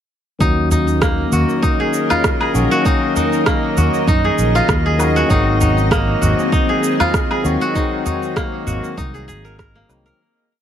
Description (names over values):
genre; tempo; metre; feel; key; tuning
organic downtempo; 98 BPM; 4/4; swing 55% on 16ths; Eb dorian; A4 = 440 Hz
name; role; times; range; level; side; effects
barky tine electric piano; accompaniment; 0.4-10.2 s; Eb3 to Bb4; -22 LUFS; left 4 dB; sidechain pumping, low-pass filter, ping-pong delay
bowed-like drone; sustained chords; 0.9-10.2 s; C4 to F5; -24 LUFS; equal; built-in reverb, sidechain pumping
kora; arpeggios; 0.4-10.6 s; Bb3 to Bb4; -20 LUFS; equal; ping-pong delay
fretless electric bass; bass; 0.4-10.1 s; Ab1 to Gb2; -18 LUFS; right 1 dB; none
electronic kick drum; drums; 0.4-9.7 s; none; -19 LUFS; equal; none
electronic shaker, rim click and woodblock; drums; 0.4-10.2 s; none; -23 LUFS; right 2 dB; none
drifting glass-harmonics texture; texture; 1.2-10.2 s; Eb5; -28 LUFS; right 6 dB; chorus, built-in reverb
udu; percussion; 0.7-8.8 s; none; -22 LUFS; equal; none
room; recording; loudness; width
light reverb, digital ambience; none; -14 LUFS; side -9 dB against mid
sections
0.4-10.2 groove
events
filter sweep on tine electric piano 0.4-10.2; fade-out 6.9-10.2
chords
0.4 Ebm7; 5.3 Ab7